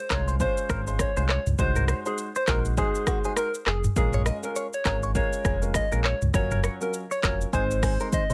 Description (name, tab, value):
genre	afrobeats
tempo	101 BPM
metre	4/4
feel	swing 58% on 16ths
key	unclear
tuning	A4 = 441 Hz
part	soft struck synth lead	melody	0.0-8.3 s	Ab4 to Eb5	-32 LUFS	equal	chorus, plate reverb, delay
part	warm baby grand piano	accompaniment	0.1-8.3 s	Gb3 to C5	-35 LUFS	equal	plate reverb
part	direct-recorded clean electric guitar	riff	0.1-8.2 s	Gb4 to Eb5	-36 LUFS	equal	phaser, delay
part	sub bass with octave	bass	0.1-8.0 s	F1 to Db2	-29 LUFS	equal	none
part	afro-pop drum kit	drums	0.1-8.3 s	handclaps, hi-hat, kick drum, rim click, shaker, toms	-29 LUFS	equal	none
room	light reverb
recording	none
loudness	-26 LUFS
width	mono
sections	0.0-8.3 A section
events	drum fill 8.1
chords	0.0 Dbmaj7; 1.6 Ab7; 4.0 Bbm7; 6.3 Gbmaj7; 7.5 Ab